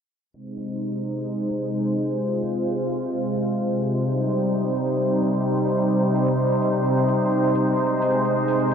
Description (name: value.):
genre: EDM, festival progressive house.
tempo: 129 BPM.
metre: 4/4.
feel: straight.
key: Ab major.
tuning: A4 = 438 Hz.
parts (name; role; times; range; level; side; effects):
supersaw pad; sustained chords; 0.3-8.7 s; C3 to C5; -20 LUFS; equal; none.
electronic hi-hat; drums; 0.3-8.7 s; none; -54 LUFS; equal; none.
room: moderate huge ambient reverb, RT60 6.3 s.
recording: low-pass filter.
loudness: -20 LUFS.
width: side -7 dB against mid.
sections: 0.3-8.7 A section.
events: filter sweep 0.3-8.7.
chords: 0.3 Ab; 4.1 Cm; 7.8 Ab.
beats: | 0.34 0.81 1.27 1.74 | 2.20 2.67 3.13 3.60 | 4.06 4.53 5.00 5.46 | 5.92 6.39 6.86 7.32 | 7.79 8.25 8.71.